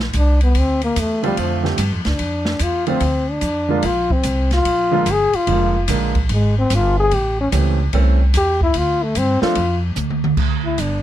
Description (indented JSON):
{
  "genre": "jazz, small-group swing and bop",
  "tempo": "146 BPM",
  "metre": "4/4",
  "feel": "swing 66% on 8ths",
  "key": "D minor",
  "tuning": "A4 = 441 Hz",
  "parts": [
    { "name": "upright bass", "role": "bass", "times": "0.0-11.0 s", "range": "F1 to G2", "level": "-19 LUFS", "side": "equal", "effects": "none" },
    { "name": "open jazz drum kit", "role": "drums", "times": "0.0-10.9 s", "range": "crash cymbal, hi-hat, kick drum, ride cymbal, snare drum, toms", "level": "-24 LUFS", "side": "equal", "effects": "none" },
    { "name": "mellow trombone", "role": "melody", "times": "0.2-11.0 s", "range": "F3 to Ab4", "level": "-19 LUFS", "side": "left 2 dB", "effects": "none" },
    { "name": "warm grand piano", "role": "accompaniment", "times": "1.2-9.6 s", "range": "D3 to A4", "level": "-21 LUFS", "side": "right 5 dB", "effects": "none" }
  ],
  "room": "little or no reverb",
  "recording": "close, detailed microphones",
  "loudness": "-15 LUFS",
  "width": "side -12 dB against mid",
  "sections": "0.0-10.4 A section",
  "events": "trombone solo 0.0-11.0; drum fill 10.0-10.4",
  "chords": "0.0 Gm (rootless); 0.6 Dm7; 3.8 Bb7; 7.1 A7#9; 8.8 Dm; 10.4 N.C."
}